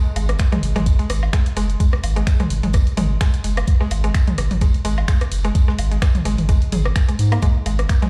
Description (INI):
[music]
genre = minimal techno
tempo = 128 BPM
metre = 4/4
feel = swing 55% on 16ths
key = unclear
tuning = A4 = 444 Hz
[part]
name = mallet-like synth pluck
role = riff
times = 0.2-8.1 s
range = G#3 to G#4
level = -30 LUFS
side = equal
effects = chorus, sidechain pumping, tape echo
[part]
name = round analog bass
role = bass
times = 0.2-7.9 s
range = F#1 to G#2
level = -22 LUFS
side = equal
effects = sidechain pumping
[part]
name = punchy analog drum machine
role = drums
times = 0.2-8.1 s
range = finger snaps, hi-hat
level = -33 LUFS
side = equal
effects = none
[part]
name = soft brush drum kit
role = drums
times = 0.2-8.0 s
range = hi-hat, snare drum, tambourine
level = -42 LUFS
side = equal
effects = high-pass filter on hats, high-pass filter on snare, high-pass filter on perc, high-pass filter on room
[part]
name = garage drum kit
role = percussion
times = 0.2-8.1 s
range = rim click, toms, woodblock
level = -28 LUFS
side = equal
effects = tape echo
[part]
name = electronic kick drum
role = drums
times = 0.4-8.0 s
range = none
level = -18 LUFS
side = equal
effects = none
[sound]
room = small room reverb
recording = played on a big sound system in a bare room, large studio reverb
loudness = -18 LUFS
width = mono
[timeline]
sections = 0.0-8.1 A section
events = none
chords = none